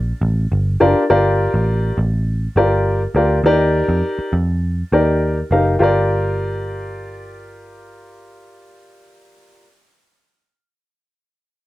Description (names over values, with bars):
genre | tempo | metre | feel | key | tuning
uptempo 1960s-style soul | 102 BPM | 4/4 | straight | G minor | A4 = 440 Hz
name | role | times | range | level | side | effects
vintage muted picked electric bass | bass | 0.0-9.6 s | F#1 to F2 | -19 LUFS | equal | none
dark upright piano | accompaniment | 0.8-9.7 s | D4 to F5 | -16 LUFS | left 1 dB | none
room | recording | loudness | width
moderate studio reverb, RT60 0.8 s | none | -15 LUFS | side -16 dB against mid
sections
0.0-1.1 A section; 1.1-5.8 B section; 5.8-8.2 C section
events
none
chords
0.0 Gm7; 3.5 Ebmaj7; 5.8 Gm7